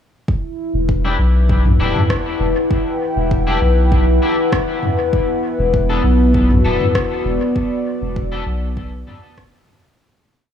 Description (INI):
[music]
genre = ambient dub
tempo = 99 BPM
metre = 4/4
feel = straight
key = E minor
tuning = A4 = 439 Hz
[part]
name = warm analog pad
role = sustained chords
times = 0.3-10.0 s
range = B3 to G5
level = -19 LUFS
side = left 1 dB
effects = chorus
[part]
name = electronic kick drum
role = drums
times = 0.3-9.5 s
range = none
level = -20 LUFS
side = equal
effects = overdrive
[part]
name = soft dub sub bass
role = bass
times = 0.7-9.0 s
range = D1 to B1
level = -16 LUFS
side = equal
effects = none
[part]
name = electric guitar at the edge of break-up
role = stabs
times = 1.0-9.3 s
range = B3 to A4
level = -26 LUFS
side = left 3 dB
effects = analog chorus, dub echo
[part]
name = organic electronic drum kit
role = drums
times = 1.7-9.8 s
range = rim click, toms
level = -22 LUFS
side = equal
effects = overdrive, dub echo
[sound]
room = moderate church reverb, RT60 3.8 s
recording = dreamy mix soaked in reverb, studio ambience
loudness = -14 LUFS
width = side -9 dB against mid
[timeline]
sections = 0.3-10.0 groove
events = fade-out 6.7-10.0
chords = 0.3 Em7; 5.1 Bm7